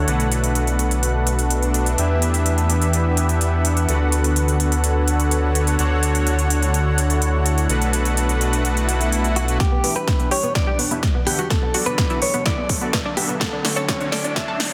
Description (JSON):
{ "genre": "progressive house", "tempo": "126 BPM", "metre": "4/4", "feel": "straight", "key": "B minor", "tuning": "A4 = 440 Hz", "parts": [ { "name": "evolving wavetable pad", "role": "sustained chords", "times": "0.0-14.7 s", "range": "D2 to F#5", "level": "-30 LUFS", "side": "equal", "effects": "phaser, built-in reverb, sidechain pumping" }, { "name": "soft supersaw", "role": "stabs", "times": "0.0-14.4 s", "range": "B2 to F#5", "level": "-26 LUFS", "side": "equal", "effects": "sidechain pumping, low-pass filter, digital delay" }, { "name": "dark detuned saw bass", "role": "bass", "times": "0.0-9.6 s", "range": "B1 to E2", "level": "-22 LUFS", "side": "equal", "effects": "tube saturation, sidechain pumping" }, { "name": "big-room dance drum kit", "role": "drums", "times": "0.1-14.7 s", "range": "hi-hat, snare drum", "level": "-27 LUFS", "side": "equal", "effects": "none" }, { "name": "swell and riser", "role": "sound effects", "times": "8.8-14.7 s", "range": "none", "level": "-35 LUFS", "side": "equal", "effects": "none" }, { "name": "direct-recorded clean electric guitar", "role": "melody", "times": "9.4-14.6 s", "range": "F#4 to E5", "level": "-28 LUFS", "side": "equal", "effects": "delay" }, { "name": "analog pluck", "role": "arpeggios", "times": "9.6-14.7 s", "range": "B3 to A4", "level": "-30 LUFS", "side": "equal", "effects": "chorus, sidechain pumping, digital delay" }, { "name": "electronic kick drum", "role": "drums", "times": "9.6-14.5 s", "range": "none", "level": "-24 LUFS", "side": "equal", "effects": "none" } ], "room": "light reverb", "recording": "dense, heavily limited modern master, high-pass filter", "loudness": "-20 LUFS", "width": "mono", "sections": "0.0-9.6 A section; 9.6-14.7 B section", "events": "filter sweep on supersaw synth 0.0-9.6, 9.6-14.7; swell 8.8-9.6; build-up 9.6-14.7; drum fill 9.6-14.7; filter sweep 9.6-14.7", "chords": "0.1 Bm7; 2.0 Em7; 3.9 Bm7/D; 5.8 Dmaj7; 7.7 Bm7; 9.6 Em7; 11.5 Bm7/D; 13.4 Dmaj7" }